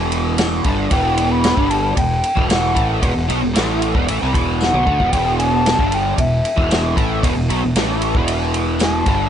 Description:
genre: psychedelic rock.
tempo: 114 BPM.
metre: 4/4.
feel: straight.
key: E minor.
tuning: A4 = 437 Hz.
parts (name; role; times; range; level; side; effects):
crunchy overdriven guitar; riff; 0.0-9.3 s; E2 to A3; -19 LUFS; right 1 dB; flanger.
fuzz fingered electric bass; bass; 0.0-9.3 s; E1 to D2; -22 LUFS; equal; overdrive.
vintage drum kit; drums; 0.1-9.2 s; kick drum, ride cymbal, snare drum, toms; -20 LUFS; equal; none.
tambourine; percussion; 0.4-8.9 s; none; -32 LUFS; left 9 dB; none.
mellow hollow silver concert flute; melody; 0.9-9.3 s; E5 to B5; -21 LUFS; left 1 dB; tape echo.
room: light reverb, small room ambience.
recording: nothing above 10.4 kHz.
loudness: -15 LUFS.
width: side -9 dB against mid.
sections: 0.0-9.3 A section.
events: drum fill 4.6-5.1.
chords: 0.0 Em.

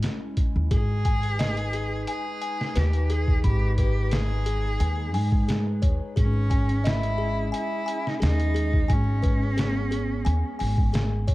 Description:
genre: trip hop.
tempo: 88 BPM.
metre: 4/4.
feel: straight.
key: G# harmonic minor.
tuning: A4 = 439 Hz.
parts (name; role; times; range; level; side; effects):
warbly tape-like pad; sustained chords; 0.0-11.3 s; G#3 to B4; -36 LUFS; right 1 dB; chorus, built-in reverb.
trip hop sampler-style drum kit; drums; 0.0-11.3 s; hi-hat, kick drum, snare drum; -25 LUFS; equal; none.
upright bass; bass; 0.6-11.3 s; G#1 to G#2; -24 LUFS; equal; none.
rich cello; melody; 0.7-11.0 s; C#4 to G#4; -31 LUFS; equal; tape echo.
music box; arpeggios; 0.7-11.3 s; G#4 to B5; -34 LUFS; left 4 dB; tape echo.
room: studio reverb.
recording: dark, warm production, vinyl crackle.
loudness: -22 LUFS.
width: side -18 dB against mid.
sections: 0.0-11.3 A section.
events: none.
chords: 0.0 C#m/G#; 0.7 G#m.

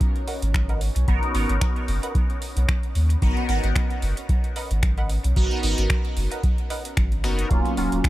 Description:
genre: dub techno.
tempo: 112 BPM.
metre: 4/4.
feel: swing 55% on 16ths.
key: unclear.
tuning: A4 = 440 Hz.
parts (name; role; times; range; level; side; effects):
booming analog drum machine; drums; 0.0-8.1 s; finger snaps, hi-hat; -32 LUFS; equal; none.
electronic kick drum; drums; 0.0-8.1 s; none; -23 LUFS; equal; none.
bubbling stepped-filter texture; texture; 0.0-7.5 s; Db4 to Db5; -39 LUFS; left 1 dB; chorus, built-in reverb, sidechain pumping.
filtered dub chord stab; riff; 0.3-6.8 s; Bb4 to Gb5; -37 LUFS; right 2 dB; ensemble chorus, sidechain pumping, dub echo.
soft dub sub bass; bass; 0.4-8.0 s; Eb1 to Eb2; -23 LUFS; equal; sidechain pumping.
resonant sweep polysynth; stabs; 1.1-8.0 s; Gb3 to Bb4; -28 LUFS; equal; chorus, phaser, sidechain pumping, dub echo.
room: little or no reverb.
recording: none.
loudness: -20 LUFS.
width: side -16 dB against mid.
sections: 0.0-7.5 A section.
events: none.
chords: 0.0 Abm7; 7.5 Ebm7.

